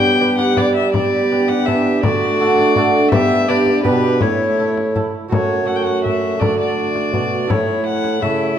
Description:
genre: classical, renaissance-style consort dance.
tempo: 165 BPM.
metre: 3/4.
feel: straight.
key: A mixolydian.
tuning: A4 = 440 Hz.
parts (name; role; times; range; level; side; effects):
dark violin; melody; 0.0-8.6 s; B4 to G5; -20 LUFS; left 4 dB; none.
warm viola; second line; 0.0-8.6 s; E4 to G4; -23 LUFS; right 5 dB; none.
lute; accompaniment; 0.0-8.6 s; F#2 to B4; -22 LUFS; right 4 dB; none.
mellow trombone; accompaniment; 0.0-8.6 s; A3 to B3; -22 LUFS; left 2 dB; none.
dark bassoon; bass; 0.0-8.6 s; F#2 to G3; -20 LUFS; right 2 dB; none.
frame drum; percussion; 0.4-8.4 s; none; -24 LUFS; left 3 dB; none.
room: wet recital hall reverb, RT60 1.8 s.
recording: none.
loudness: -14 LUFS.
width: side -9 dB against mid.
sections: 0.0-5.3 A section; 5.3-8.6 B section.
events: none.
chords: 0.0 G; 2.0 D; 3.1 G; 4.2 A; 5.3 F#m; 6.4 D; 7.5 A.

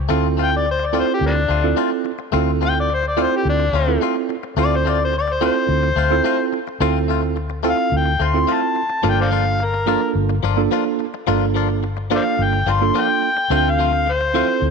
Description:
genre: blues.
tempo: 107 BPM.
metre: 4/4.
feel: straight.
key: D minor.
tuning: A4 = 441 Hz.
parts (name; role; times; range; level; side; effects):
vintage muted fingered electric bass; bass; 0.0-14.7 s; G1 to D2; -21 LUFS; left 2 dB; none.
tine electric piano; accompaniment; 0.1-14.7 s; Bb3 to A4; -22 LUFS; right 15 dB; overdrive, fast stereo tremolo.
direct-recorded clean electric guitar; stabs; 0.1-14.5 s; F3 to F4; -25 LUFS; left 13 dB; none.
overdriven harmonica; melody; 0.4-14.6 s; G3 to C6; -20 LUFS; left 4 dB; none.
room: light reverb, digital ambience.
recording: 1960s-style stereo with parts hard left and right.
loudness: -16 LUFS.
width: side -5 dB against mid.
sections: 0.1-14.7 A section.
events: harmonica solo 0.1-14.7.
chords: 0.1 Dm7; 9.0 Gm7; 13.5 Dm7.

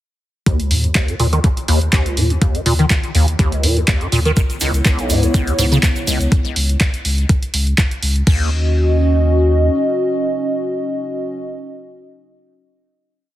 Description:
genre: acid house.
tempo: 123 BPM.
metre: 4/4.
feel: swing 54% on 16ths.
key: unclear.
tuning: A4 = 440 Hz.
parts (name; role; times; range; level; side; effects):
liquid acid bass; riff; 0.5-8.5 s; Cb2 to Eb3; -18 LUFS; equal; phaser, ensemble chorus, sidechain pumping, ping-pong delay.
electronic kick drum; drums; 0.5-8.4 s; none; -16 LUFS; equal; overdrive.
punchy analog drum machine; drums; 0.5-8.4 s; crash cymbal, handclaps, hi-hat; -21 LUFS; right 1 dB; overdrive.
warm sub bass; bass; 0.7-9.7 s; Db2 to Eb2; -16 LUFS; equal; sidechain pumping.
dark analog pad; sustained chords; 4.6-11.4 s; Cb4 to Eb5; -19 LUFS; equal; chorus, sidechain pumping.
egg shaker; percussion; 4.4-6.3 s; none; -29 LUFS; right 3 dB; none.
room: light reverb, digital ambience.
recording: heavily compressed radio sound.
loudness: -14 LUFS.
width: side -14 dB against mid.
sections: 0.5-8.3 groove; 8.3-12.2 final chord.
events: filter sweep on acid bass 0.5-6.3.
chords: 0.5 Eb5; 4.4 Dbm7; 8.3 Ebm7.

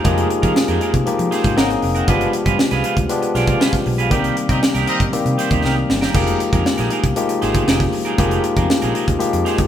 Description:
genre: polished 1980s jazz-funk pop.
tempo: 118 BPM.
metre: 4/4.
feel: straight.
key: unclear.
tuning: A4 = 440 Hz.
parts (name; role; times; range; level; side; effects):
barky tine electric piano; accompaniment; 0.0-9.7 s; Eb3 to Ab4; -19 LUFS; left 3 dB; overdrive.
electric guitar at the edge of break-up; riff; 0.0-9.6 s; C4 to D5; -23 LUFS; right 4 dB; none.
vintage muted fingered electric bass; bass; 0.0-9.7 s; F1 to F3; -23 LUFS; equal; none.
crisp fusion drum kit; drums; 0.0-9.7 s; crash cymbal, hi-hat, kick drum, snare drum; -19 LUFS; right 1 dB; none.
clear horn section; second line; 4.5-5.0 s; C4 to Eb5; -25 LUFS; left 1 dB; none.
room: moderate stone room reverb, RT60 1.3 s.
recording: band playing live in one room.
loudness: -15 LUFS.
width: side -10 dB against mid.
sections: 0.0-9.7 A section.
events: band accent 4.1-6.1; drum fill 5.6-6.1.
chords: 0.0 Fm11; 1.6 Ab9; 2.1 G7b9; 4.1 Cm7; 6.1 Fm11.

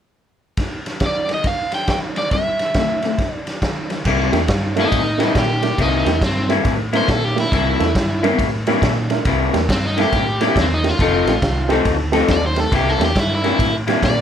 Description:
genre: electric blues shuffle.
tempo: 138 BPM.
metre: 4/4.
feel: swing 64% on 8ths.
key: C mixolydian from 4.1 s.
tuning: A4 = 440 Hz.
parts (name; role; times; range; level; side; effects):
electric guitar through a small old amp; riff; 0.6-14.1 s; G2 to A4; -20 LUFS; left 5 dB; none.
raw garage drum kit; drums; 0.6-14.2 s; crash cymbal, kick drum, ride cymbal, snare drum; -21 LUFS; right 1 dB; none.
crunchy overdriven guitar; melody; 1.1-14.2 s; C4 to G5; -21 LUFS; equal; none.
vintage muted fingered electric bass; bass; 4.0-14.2 s; F1 to Bb2; -22 LUFS; equal; none.
honky-tonk upright piano; accompaniment; 4.3-14.0 s; A3 to Bb4; -22 LUFS; right 5 dB; none.
room: light reverb.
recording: none.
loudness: -16 LUFS.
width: side -9 dB against mid.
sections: 0.6-4.1 A section; 4.1-14.2 B section.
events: overdriven electric guitar solo 4.1-14.2.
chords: 0.6 G5; 2.3 C; 3.2 G5; 4.1 C7; 11.0 F7; 12.7 C7.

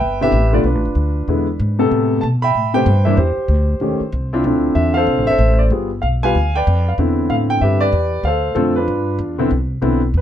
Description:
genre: jazz piano trio.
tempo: 190 BPM.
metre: 4/4.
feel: swing 63% on 8ths.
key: C major.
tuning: A4 = 440 Hz.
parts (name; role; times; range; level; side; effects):
warm concert grand piano; melody; 0.0-10.2 s; C3 to B5; -17 LUFS; equal; none.
upright bass; bass; 0.0-10.2 s; F1 to B2; -18 LUFS; equal; none.
room: light reverb.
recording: dark, warm production.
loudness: -14 LUFS.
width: side -10 dB against mid.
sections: 0.0-9.5 A section.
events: none.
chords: 0.0 Cmaj9 (rootless); 0.6 Bm7b5; 1.3 E7; 1.9 Am9; 3.2 D9sus4; 3.8 Eb7#11; 4.4 Dm9; 5.7 G7b9; 7.0 Cmaj9; 8.2 Dm7; 8.9 G6; 9.5 Cmaj9.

